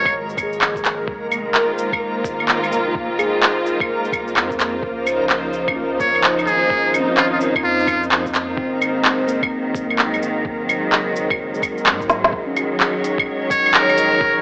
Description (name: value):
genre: future garage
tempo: 128 BPM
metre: 4/4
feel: swing 64% on 16ths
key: Eb dorian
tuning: A4 = 439 Hz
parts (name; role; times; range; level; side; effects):
- trumpet with metal mute; melody; 0.0-0.1, 6.0-8.0, 13.5-14.4 s; F4 to Db5; -19 LUFS; equal; cassette tape, analog delay
- tine electric piano; accompaniment; 0.0-14.4 s; Bb3 to Eb5; -26 LUFS; left 1 dB; medium stereo tremolo, sidechain pumping, cassette tape, analog delay
- rich symphonic string section; sustained chords; 0.0-14.4 s; Db3 to Db5; -22 LUFS; equal; sidechain pumping, cassette tape
- warm sub bass; bass; 0.0-14.4 s; Eb1 to Ab2; -36 LUFS; equal; sidechain pumping
- backwards swelling texture; texture; 0.0-12.3 s; Bb3 to Bb4; -26 LUFS; equal; built-in reverb, cassette tape
- electronic kick drum; drums; 0.1-14.3 s; none; -30 LUFS; equal; small room ambience, cassette tape
- organic electronic drum kit; drums; 0.1-14.1 s; claves, handclaps, hi-hat, shaker, snare drum; -18 LUFS; equal; small room ambience, cassette tape
room: light reverb, digital ambience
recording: home recording on cassette, AM radio sound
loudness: -16 LUFS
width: side -29 dB against mid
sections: 0.0-12.3 A section; 12.3-14.4 B section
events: drum fill 12.1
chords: 0.0 Ebm11; 1.1 Fm7; 4.8 Dbmaj9; 8.6 Ab7; 12.3 Ebm7